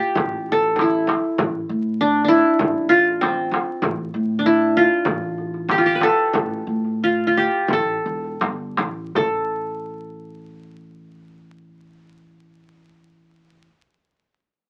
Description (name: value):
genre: Turkish makam ensemble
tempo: 78-98 BPM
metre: 4/4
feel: straight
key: A makam nihavent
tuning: A4 = 441 Hz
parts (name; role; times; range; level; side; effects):
- qanun; melody; 0.0-13.7 s; C4 to B4; -21 LUFS; equal; none
- upright bass; bass; 0.2-13.7 s; E1 to A2; -31 LUFS; equal; none
- darbuka; percussion; 0.2-9.5 s; none; -28 LUFS; equal; none
- frame drum; percussion; 0.2-9.5 s; none; -29 LUFS; equal; none
room: light reverb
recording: very old 78 rpm record, vinyl crackle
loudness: -20 LUFS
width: mono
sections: 0.0-9.2 A section; 9.2-12.2 B section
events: slowing down 3.8-9.2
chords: none